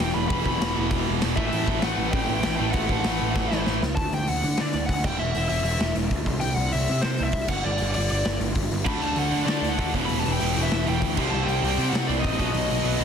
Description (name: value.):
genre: punk rock.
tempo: 196 BPM.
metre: 4/4.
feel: straight.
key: unclear.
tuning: A4 = 439 Hz.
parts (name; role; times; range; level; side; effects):
smooth overdriven lead guitar; melody; 0.0-13.0 s; C5 to B5; -29 LUFS; left 2 dB; digital delay.
overdriven semi-hollow guitar; riff; 0.0-3.8, 8.8-13.0 s; E2 to D4; -30 LUFS; left 16 dB; none.
tight distorted guitar; riff; 0.0-3.8, 8.8-13.0 s; E2 to D4; -29 LUFS; right 15 dB; distortion.
fuzz picked electric bass; bass; 0.0-13.0 s; E1 to D3; -27 LUFS; equal; overdrive.
raw garage drum kit; drums; 0.0-13.0 s; crash cymbal, hi-hat, kick drum, snare drum; -27 LUFS; equal; none.
room: little or no reverb.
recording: dense, heavily limited modern master.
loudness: -22 LUFS.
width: side -7 dB against mid.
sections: 0.0-4.0 A section; 4.0-13.0 B section.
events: drum fill 3.4-4.0; half time 4.0-13.0.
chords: 0.0 E5; 1.4 A5; 4.0 D; 5.0 N.C.; 6.3 C; 7.5 G5; 8.9 D; 9.9 Em; 11.2 C5; 12.4 B.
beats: 0.00 | 0.31 0.61 0.92 1.22 | 1.53 1.83 2.14 2.44 | 2.75 3.05 3.35 3.66 | 3.97 4.27 4.58 4.88 | 5.19 5.50 5.80 6.11 | 6.42 6.72 7.03 7.33 | 7.64 7.95 8.25 8.56 | 8.87 9.17 9.48 9.79 | 10.09 10.40 10.70 11.01 | 11.32 11.62 11.93 12.23 | 12.54 12.85.